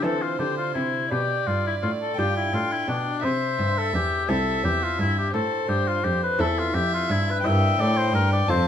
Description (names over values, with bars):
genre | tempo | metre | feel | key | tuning
classical, baroque-style sonata movement with continuo | 57 BPM (dotted quarters) | 6/8 | straight | C major | A4 = 440 Hz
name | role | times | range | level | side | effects
mellow oboe | melody | 0.0-8.7 s | D4 to E5 | -25 LUFS | left 6 dB | none
rich violin | second line | 0.0-8.7 s | C5 to A5 | -29 LUFS | right 6 dB | none
lute | accompaniment | 0.0-8.7 s | E2 to Bb4 | -31 LUFS | equal | none
rich cello | bass | 0.0-8.7 s | C2 to E3 | -26 LUFS | right 1 dB | none
room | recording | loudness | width
moderate recital hall reverb, RT60 1.6 s | close, detailed microphones | -21 LUFS | side -9 dB against mid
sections
0.0-8.7 A section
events
none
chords
0.0 C; 1.1 G7; 3.2 C; 5.3 Am; 7.4 C7/G